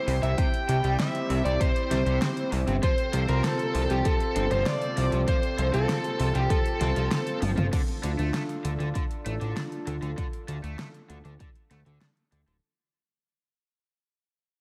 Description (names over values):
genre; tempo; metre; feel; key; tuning
synthwave; 98 BPM; 4/4; straight; D minor; A4 = 439 Hz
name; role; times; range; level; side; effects
high-gain lead guitar; melody; 0.0-7.4 s; G4 to G5; -33 LUFS; equal; distortion, slapback echo, tape echo
soft synth bell; second line; 0.0-7.4 s; G4 to G5; -36 LUFS; equal; chorus, phaser, slapback echo, tape echo
chorused pulse-width pad; sustained chords; 0.0-12.6 s; C3 to C5; -36 LUFS; equal; sidechain pumping
cranked stack guitar; riff; 0.1-12.5 s; C3 to F4; -40 LUFS; equal; overdrive, analog chorus, low-pass filter, slapback echo, delay
fat analog bass; bass; 0.1-12.6 s; D1 to D2; -29 LUFS; equal; sidechain pumping
pop drum kit; drums; 0.1-12.6 s; crash cymbal, hi-hat, snare drum, toms; -35 LUFS; equal; slapback echo
electronic kick drum; drums; 0.4-11.5 s; none; -29 LUFS; equal; none
room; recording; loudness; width
wet lush hall reverb, RT60 2.2 s; big arena sound; -27 LUFS; mono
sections
0.0-7.7 A section; 7.7-12.6 B section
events
drum fill 7.4-7.7; fade-out 7.7-12.6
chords
0.0 C; 2.8 F; 7.7 Dm